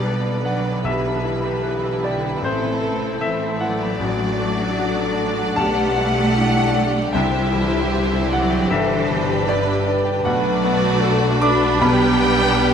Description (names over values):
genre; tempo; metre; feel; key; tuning
cinematic; 76 BPM; 4/4; rubato; unclear; A4 = 440 Hz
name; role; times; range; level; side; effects
warm symphonic violin section; melody; 0.0-12.7 s; A4 to B5; -26 LUFS; left 2 dB; none
warm symphonic violin section; second line; 0.0-12.7 s; D4 to D5; -27 LUFS; right 1 dB; none
clear concert grand piano; accompaniment; 0.0-12.7 s; A1 to D6; -24 LUFS; left 2 dB; none
rich symphonic viola section; accompaniment; 0.0-12.7 s; D3 to E4; -26 LUFS; right 2 dB; none
mellow French horn section; sustained chords; 0.0-12.7 s; D4 to B4; -26 LUFS; left 2 dB; none
concert harp; arpeggios; 0.0-12.7 s; G2 to B5; -28 LUFS; left 9 dB; none
rich symphonic cello section; bass; 0.0-12.7 s; C3 to D4; -25 LUFS; right 3 dB; none
warm symphonic double bass section; bass; 0.0-12.7 s; G1 to C2; -26 LUFS; right 2 dB; none
room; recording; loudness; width
light reverb; close, detailed microphones; -17 LUFS; side -7 dB against mid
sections
0.0-12.7 A section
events
none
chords
0.0 G/B; 0.8 Em/B; 2.4 Amadd9; 4.0 D/A; 5.6 G/B; 7.1 C; 8.7 G; 10.2 Bm7; 11.8 G/B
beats
0.05 | 0.84 1.63 2.42 3.21 | 4.00 4.78 5.57 6.35 | 7.14 7.92 8.70 9.47 | 10.25 11.03 11.82 12.60